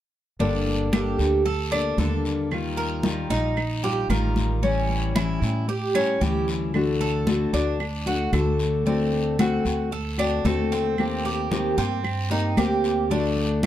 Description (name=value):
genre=latin, Cuban son and guajira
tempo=113 BPM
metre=4/4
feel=straight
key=G minor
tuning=A4 = 440 Hz
part: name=fingerpicked steel-string acoustic guitar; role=accompaniment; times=0.4-13.7 s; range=D3 to A4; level=-25 LUFS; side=left 2 dB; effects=none
part: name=Cuban tres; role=arpeggios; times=0.4-13.7 s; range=C4 to Bb4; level=-27 LUFS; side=right 2 dB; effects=none
part: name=upright bass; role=bass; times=0.4-13.7 s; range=G1 to A2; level=-27 LUFS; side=right 1 dB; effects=none
part: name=congas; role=percussion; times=0.4-13.7 s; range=none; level=-29 LUFS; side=left 1 dB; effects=none
part: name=guiro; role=percussion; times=0.4-13.7 s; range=none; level=-38 LUFS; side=left 3 dB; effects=none
part: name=claves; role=percussion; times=0.9-13.7 s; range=none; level=-35 LUFS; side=right 8 dB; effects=none
room=light reverb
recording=dark, warm production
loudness=-21 LUFS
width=side -12 dB against mid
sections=0.4-13.7 A section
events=none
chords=0.4 Gmadd9; 2.5 Ebadd9; 4.6 A7; 6.7 D; 8.9 D7; 11.0 Cm7/Eb; 13.1 D